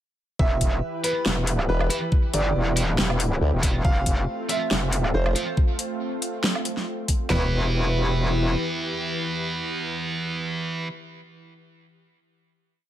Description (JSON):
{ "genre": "heavy wobble dubstep", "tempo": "139 BPM", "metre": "4/4", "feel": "swing 54% on 16ths, half-time", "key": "E phrygian", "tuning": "A4 = 440 Hz", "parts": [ { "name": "clear baby grand piano", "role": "melody", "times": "0.4-10.9 s", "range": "B4 to F5", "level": "-31 LUFS", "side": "right 3 dB", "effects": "tape echo" }, { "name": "lush unison pad", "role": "sustained chords", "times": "0.4-10.9 s", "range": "E3 to B4", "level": "-31 LUFS", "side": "equal", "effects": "chorus, sidechain pumping" }, { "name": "metallic wobble bass", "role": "bass", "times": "0.4-8.6 s", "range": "E1 to G1", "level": "-23 LUFS", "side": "equal", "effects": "chorus, overdrive" }, { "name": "dubstep drum kit", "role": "drums", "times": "0.4-7.4 s", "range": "handclaps, kick drum, snare drum, toms", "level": "-22 LUFS", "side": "equal", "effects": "overdrive" }, { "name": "dubstep drum kit", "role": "drums", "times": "0.6-7.2 s", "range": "hi-hat, snare drum, woodblock", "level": "-26 LUFS", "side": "equal", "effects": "none" }, { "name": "scooped high-gain guitar", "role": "stabs", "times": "1.0-10.9 s", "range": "E3 to F4", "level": "-30 LUFS", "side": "right 2 dB", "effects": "distortion, tape echo" }, { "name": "formant-sweep wobble bass", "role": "bass", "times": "1.7-5.3 s", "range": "E1 to D2", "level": "-21 LUFS", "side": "equal", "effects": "chorus, overdrive" } ], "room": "little or no reverb", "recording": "none", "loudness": "-22 LUFS", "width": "side -12 dB against mid", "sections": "0.4-7.3 drop; 7.3-10.8 final chord", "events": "drop 0.4-7.3", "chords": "0.4 Em; 3.8 F; 7.3 Em" }